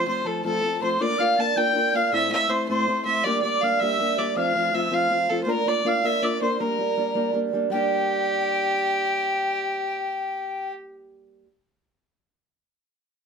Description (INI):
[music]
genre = celtic folk, Celtic jig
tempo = 107 BPM (dotted quarters)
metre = 6/8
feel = straight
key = G dorian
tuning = A4 = 438 Hz
[part]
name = warm fiddle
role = melody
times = 0.0-10.7 s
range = G4 to A5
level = -25 LUFS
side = right 2 dB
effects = none
[part]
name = mellow hollow tin whistle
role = second line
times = 0.0-10.7 s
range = G5 to A6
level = -27 LUFS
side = left 5 dB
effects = none
[part]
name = fingerpicked old ladder-braced acoustic guitar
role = accompaniment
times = 0.0-11.5 s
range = A2 to Bb4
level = -26 LUFS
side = right 2 dB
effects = none
[sound]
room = wet studio reverb, RT60 0.5 s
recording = band playing live in one room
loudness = -21 LUFS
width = side -6 dB against mid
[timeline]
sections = 0.0-7.7 A section; 7.7-10.0 B section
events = none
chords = 0.0 F; 1.0 Bb; 2.1 Am; 3.2 Gm; 4.4 F; 5.5 Bb; 6.6 Gm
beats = 0.45 | 1.01 1.57 | 2.12 2.68 | 3.24 3.80 | 4.36 4.92 | 5.48 6.04 | 6.60 7.16 | 7.72 8.28 | 8.84 9.40